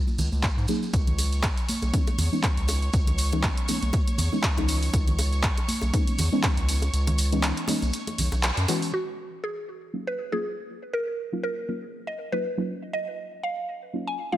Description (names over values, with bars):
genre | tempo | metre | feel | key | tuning
deep house | 120 BPM | 4/4 | swing 56% on 16ths | Eb phrygian | A4 = 441 Hz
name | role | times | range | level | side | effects
congas and bongos | percussion | 0.1-8.8 s | none | -33 LUFS | right 1 dB | none
maracas | percussion | 0.1-8.9 s | none | -37 LUFS | right 3 dB | none
round analog bass | bass | 0.2-8.7 s | Cb2 to Ab2 | -25 LUFS | equal | sidechain pumping
deep house drum kit | drums | 0.4-8.9 s | handclaps, hi-hat | -29 LUFS | equal | overdrive, low-pass filter on snare, low-pass filter on hats
electronic kick drum | drums | 0.4-6.5 s | none | -25 LUFS | equal | overdrive
deep mellow chord stab | stabs | 0.7-14.4 s | Fb3 to Ab4 | -30 LUFS | equal | chorus, sidechain pumping, digital delay
rich studio violin section | texture | 0.9-8.9 s | Db5 to Db6 | -38 LUFS | right 1 dB | sidechain pumping
mallet-like synth pluck | melody | 8.9-14.4 s | Gb4 to Ab5 | -30 LUFS | equal | wide subtle chorus, vintage 12-bit sampler grit, tape echo
room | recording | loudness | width
light reverb | none | -23 LUFS | side -13 dB against mid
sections
0.0-8.9 A section; 8.9-14.4 B section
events
filter sweep on synth stab 0.0-8.9, 8.9-14.4; kick drops out 6.9-8.9; band accent 8.4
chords
0.0 Ebm7; 0.9 Dbm9; 8.9 Ebm9